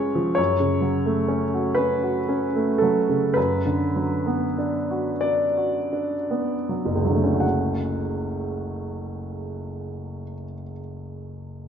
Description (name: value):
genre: classical, romantic nocturne for solo piano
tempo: 25-45 BPM (dotted quarters)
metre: 6/8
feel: rubato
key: F# minor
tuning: A4 = 440 Hz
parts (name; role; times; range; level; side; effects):
- clear upright piano; solo; 0.0-11.7 s; F#1 to F#5; -22 LUFS; equal; none
room: wet recital hall reverb, RT60 1.9 s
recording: nothing above 7.5 kHz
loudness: -21 LUFS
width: side -8 dB against mid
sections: 0.0-7.4 A section; 7.4-11.5 B section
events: slowing down 0.0-7.4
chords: 0.4 F#m; 3.4 Bm/F#; 7.4 F#m